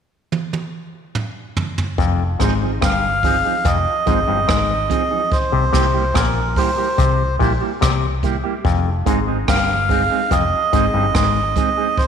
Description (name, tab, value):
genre	roots reggae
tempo	72 BPM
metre	4/4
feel	straight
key	F minor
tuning	A4 = 440 Hz
part	jazz brush drum kit	drums	0.3-12.1 s	hi-hat, kick drum, rim click, toms	-22 LUFS	right 1 dB	slapback echo
part	overdriven clav	riff	2.0-11.4 s	F2 to C3	-23 LUFS	left 8 dB	auto-wah
part	vintage muted fingered electric bass	bass	2.0-11.5 s	F1 to C2	-22 LUFS	left 1 dB	none
part	electric guitar with an envelope filter	accompaniment	2.4-11.9 s	F3 to Ab4	-24 LUFS	right 7 dB	tape echo
part	melodica	melody	2.8-12.1 s	Bb4 to F5	-19 LUFS	right 2 dB	tape echo
room	moderate echo chamber reverb, RT60 2.3 s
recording	1960s-style stereo with parts hard left and right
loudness	-16 LUFS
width	side -7 dB against mid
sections	0.0-2.0 A section; 2.0-12.1 B section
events	drum fill 0.3-2.0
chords	0.0 N.C.; 2.0 Fm7; 5.3 C7; 8.6 Fm7